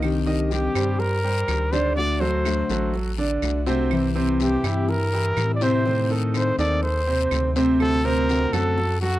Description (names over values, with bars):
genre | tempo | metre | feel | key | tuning
latin, Cuban son and guajira | 123 BPM | 4/4 | straight | unclear | A4 = 439 Hz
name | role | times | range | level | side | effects
picked steel-string acoustic guitar | accompaniment | 0.0-8.8 s | C3 to G4 | -26 LUFS | left 6 dB | none
bright grand piano | arpeggios | 0.0-9.2 s | C3 to Eb5 | -25 LUFS | right 3 dB | none
rubbery square bass | bass | 0.0-9.2 s | A1 to A2 | -25 LUFS | equal | none
claves | percussion | 0.0-8.8 s | none | -35 LUFS | right 17 dB | none
guiro | percussion | 0.0-9.2 s | none | -37 LUFS | left 13 dB | none
breathy trumpet | melody | 0.5-9.2 s | F#4 to D5 | -25 LUFS | equal | none
room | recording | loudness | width
light reverb | dry, close 1970s-style studio recording | -20 LUFS | side -15 dB against mid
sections
0.0-9.2 A section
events
none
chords
0.0 Cmadd9; 2.0 D; 3.9 C; 5.9 Adim; 7.8 D7